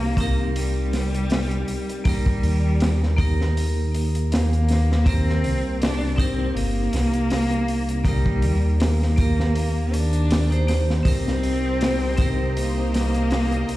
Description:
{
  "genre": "trip hop",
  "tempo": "80 BPM",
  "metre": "4/4",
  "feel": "swing 55% on 16ths",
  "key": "C minor",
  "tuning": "A4 = 440 Hz",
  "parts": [
    { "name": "rich cello", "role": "melody", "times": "0.0-13.8 s", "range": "G3 to D4", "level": "-26 LUFS", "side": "equal", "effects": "vintage 12-bit sampler grit, tape echo" },
    { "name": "vibraphone with hard mallets", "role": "accompaniment", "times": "0.0-13.8 s", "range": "Bb3 to C5", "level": "-28 LUFS", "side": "right 1 dB", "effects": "tremolo, tape echo" },
    { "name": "dark detuned saw bass", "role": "bass", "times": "0.0-13.6 s", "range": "G1 to Eb2", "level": "-22 LUFS", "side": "equal", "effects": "none" },
    { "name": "crunchy breakbeat drum kit", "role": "drums", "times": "0.2-13.8 s", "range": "hi-hat, kick drum, snare drum", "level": "-25 LUFS", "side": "equal", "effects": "none" },
    { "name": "clear symphonic string section", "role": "sustained chords", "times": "11.1-13.8 s", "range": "G4 to Bb5", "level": "-35 LUFS", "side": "left 1 dB", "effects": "none" }
  ],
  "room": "little or no reverb",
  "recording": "played on a big sound system in a bare room, stone room reverb",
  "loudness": "-19 LUFS",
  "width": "side -16 dB against mid",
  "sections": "0.0-13.8 A section",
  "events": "none",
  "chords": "0.0 Cm7; 2.1 Eb; 5.1 Cm7"
}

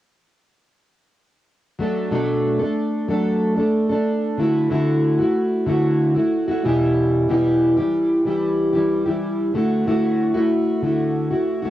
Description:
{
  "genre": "pop",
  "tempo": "93 BPM",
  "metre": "4/4",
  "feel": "straight",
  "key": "D major",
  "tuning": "A4 = 440 Hz",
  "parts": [
    { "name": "fingerpicked plugged-in steel-string acoustic guitar", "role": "accompaniment", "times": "1.8-11.7 s", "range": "E2 to A4", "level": "-17 LUFS", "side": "equal", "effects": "double-tracked left and right, cassette tape" }
  ],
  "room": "moderate studio reverb, RT60 0.5 s",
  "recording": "home recording on cassette",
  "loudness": "-17 LUFS",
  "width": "side -13 dB against mid",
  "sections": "1.8-11.7 A section",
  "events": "none",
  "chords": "1.8 Bm7; 4.4 Dadd9; 6.7 Em; 9.6 Dadd9"
}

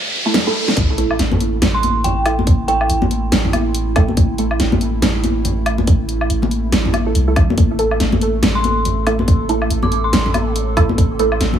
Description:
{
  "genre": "deep dubstep",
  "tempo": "141 BPM",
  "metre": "4/4",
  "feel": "swing 59% on 16ths, half-time",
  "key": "A minor",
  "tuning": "A4 = 440 Hz",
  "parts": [
    { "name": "riser and sub drop", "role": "sound effects", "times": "0.0-2.5 s", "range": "none", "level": "-22 LUFS", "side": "equal", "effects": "none" },
    { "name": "filtered dub chord stab", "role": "stabs", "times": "0.3-11.3 s", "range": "A3 to A4", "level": "-22 LUFS", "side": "right 4 dB", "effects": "phaser, analog chorus, dub echo" },
    { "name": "dubstep drum kit", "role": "drums", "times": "0.3-11.5 s", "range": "hi-hat, snare drum, woodblock", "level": "-20 LUFS", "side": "equal", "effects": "none" },
    { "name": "dark analog pad", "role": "sustained chords", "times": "1.3-11.6 s", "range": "A3 to A4", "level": "-25 LUFS", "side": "right 2 dB", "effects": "chorus" },
    { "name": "soft dub sub bass", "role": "bass", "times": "0.8-11.6 s", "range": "A1 to C2", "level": "-19 LUFS", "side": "right 1 dB", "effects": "none" },
    { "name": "electronic kick drum", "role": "drums", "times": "0.8-11.1 s", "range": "none", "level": "-14 LUFS", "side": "equal", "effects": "high-pass filter on kick, high-pass filter on room" },
    { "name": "congas", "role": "percussion", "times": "1.3-11.6 s", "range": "none", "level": "-22 LUFS", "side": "left 4 dB", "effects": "none" },
    { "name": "dark detuned synth bell", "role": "melody", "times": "1.7-3.1, 8.6-10.5 s", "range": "G5 to D6", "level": "-22 LUFS", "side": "equal", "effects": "chorus, dub echo" }
  ],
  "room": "light reverb",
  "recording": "none",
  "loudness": "-14 LUFS",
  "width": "side -9 dB against mid",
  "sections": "0.8-11.6 A section",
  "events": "break 0.0-0.8; riser 0.0-0.8; drum fill 0.3-0.8; drop 0.8-11.6; impact 0.8-2.5",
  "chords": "0.0 A5"
}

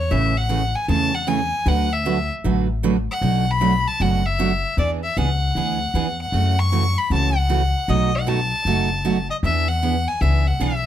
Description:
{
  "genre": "country, western swing",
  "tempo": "154 BPM",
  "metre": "4/4",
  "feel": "swing 64% on 8ths",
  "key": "A major",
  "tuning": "A4 = 440 Hz",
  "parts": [
    { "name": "clear fiddle", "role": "melody", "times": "0.0-10.9 s", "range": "C#5 to C#6", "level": "-23 LUFS", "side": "left 2 dB", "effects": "none" },
    { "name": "upright bass", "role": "bass", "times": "0.0-10.9 s", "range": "F#1 to F#2", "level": "-21 LUFS", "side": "left 1 dB", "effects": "none" },
    { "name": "picked steel-string acoustic guitar", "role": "accompaniment", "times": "0.1-10.7 s", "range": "B2 to B4", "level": "-23 LUFS", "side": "right 5 dB", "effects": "none" }
  ],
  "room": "light reverb",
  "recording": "none",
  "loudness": "-18 LUFS",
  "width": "side -11 dB against mid",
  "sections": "0.1-10.9 A section",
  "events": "none",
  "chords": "0.1 Amaj7; 1.7 D6; 3.2 Bm7; 4.8 E7; 6.3 F#m7; 7.9 B7; 9.4 E7"
}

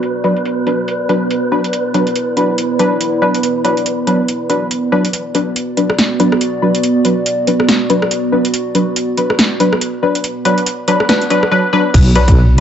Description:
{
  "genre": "deep dubstep",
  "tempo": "141 BPM",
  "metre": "4/4",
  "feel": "swing 59% on 16ths, half-time",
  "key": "B minor",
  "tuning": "A4 = 440 Hz",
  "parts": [
    { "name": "dark analog pad", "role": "sustained chords", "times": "0.0-12.6 s", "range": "B3 to D5", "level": "-18 LUFS", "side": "right 1 dB", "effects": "chorus, phaser" },
    { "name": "deep house drum kit", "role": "drums", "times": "0.0-12.6 s", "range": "crash cymbal, hi-hat, rim click, snare drum", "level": "-17 LUFS", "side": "equal", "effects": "overdrive, low-pass filter on hats, low-pass filter on snare, low-pass filter on cymbals" },
    { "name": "wind-like tuned noise texture", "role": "texture", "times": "0.0-5.1 s", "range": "B4", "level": "-23 LUFS", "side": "right 2 dB", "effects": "built-in reverb" },
    { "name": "filtered dub chord stab", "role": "stabs", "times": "0.2-12.2 s", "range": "F#3 to B4", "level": "-15 LUFS", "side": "left 1 dB", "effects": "chorus, dub echo" },
    { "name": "deep soft wobble bass", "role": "bass", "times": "11.9-12.6 s", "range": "B1", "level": "-9 LUFS", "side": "equal", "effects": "chorus" },
    { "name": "electronic kick drum", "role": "drums", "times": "11.9-12.3 s", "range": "none", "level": "-12 LUFS", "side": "equal", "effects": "none" }
  ],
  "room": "wet spring reverb, RT60 1.2 s",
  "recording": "nothing above 8.0 kHz",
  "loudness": "-12 LUFS",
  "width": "side -9 dB against mid",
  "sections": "0.0-5.1 A section; 5.1-11.9 B section",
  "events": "build-up 5.1-11.9; filter sweep on synth stab 5.1-11.9",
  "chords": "0.0 Bm"
}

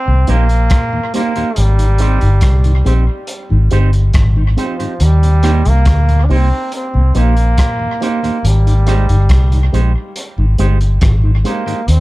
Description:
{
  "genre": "roots reggae",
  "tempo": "70 BPM",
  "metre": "4/4",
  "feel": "straight",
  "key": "unclear",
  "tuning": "A4 = 439 Hz",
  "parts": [
    { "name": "bright trombone", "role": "melody", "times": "0.0-12.0 s", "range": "F3 to D4", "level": "-21 LUFS", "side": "right 1 dB", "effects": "tape echo" },
    { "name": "mellow tonewheel organ", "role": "accompaniment", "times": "0.1-11.7 s", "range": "Eb2 to G4", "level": "-25 LUFS", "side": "left 2 dB", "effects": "slow rotary speaker" },
    { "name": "vintage muted fingered electric bass", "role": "bass", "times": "0.1-12.0 s", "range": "G1 to Eb2", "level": "-10 LUFS", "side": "equal", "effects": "none" },
    { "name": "electric guitar with an envelope filter", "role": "accompaniment", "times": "0.3-11.8 s", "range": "Ab3 to C5", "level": "-23 LUFS", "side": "right 7 dB", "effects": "tube saturation, tape echo" },
    { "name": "crunchy breakbeat drum kit", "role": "drums", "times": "0.3-12.0 s", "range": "hi-hat, kick drum, rim click", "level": "-18 LUFS", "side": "equal", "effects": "none" }
  ],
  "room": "little or no reverb",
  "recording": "dark, warm production",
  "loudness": "-10 LUFS",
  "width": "side -19 dB against mid",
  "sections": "0.0-12.0 A section",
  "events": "none",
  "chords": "0.0 Eb6; 1.6 Abmaj7; 5.0 Eb6; 8.4 Abmaj7"
}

